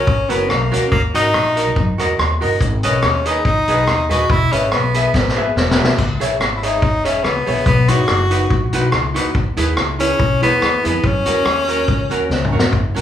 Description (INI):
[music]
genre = ska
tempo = 142 BPM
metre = 4/4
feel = swing 54% on 8ths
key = F# mixolydian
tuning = A4 = 440 Hz
[part]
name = edgy tenor saxophone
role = melody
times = 0.0-12.5 s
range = A#3 to F#4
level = -18 LUFS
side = left 1 dB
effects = none
[part]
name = archtop guitar, miked and amplified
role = accompaniment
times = 0.0-13.0 s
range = C#4 to E5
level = -21 LUFS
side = right 1 dB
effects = tape echo
[part]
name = upright bass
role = bass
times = 0.0-13.0 s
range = D#1 to F#2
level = -20 LUFS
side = left 1 dB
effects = none
[part]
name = vintage drum kit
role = drums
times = 0.1-13.0 s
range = hi-hat, kick drum, rim click, snare drum, splash cymbal, toms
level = -19 LUFS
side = left 1 dB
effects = none
[sound]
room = wet large studio reverb, RT60 0.8 s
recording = band playing live in one room, studio reverb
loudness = -14 LUFS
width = side -10 dB against mid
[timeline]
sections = 0.0-12.7 A section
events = drum fill 5.1-6.0, 12.3-12.7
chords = 0.0 F#; 0.9 D#m; 2.6 G#m; 4.3 E; 6.0 C#m; 7.7 B; 9.4 E; 11.0 F#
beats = 0.07 0.50 | 0.92 1.34 1.76 2.18 | 2.60 3.03 3.45 3.87 | 4.29 4.71 5.13 5.55 | 5.98 6.40 6.82 7.24 | 7.67 8.09 8.51 8.93 | 9.35 9.77 10.20 10.62 | 11.04 11.46 11.88 12.30 | 12.73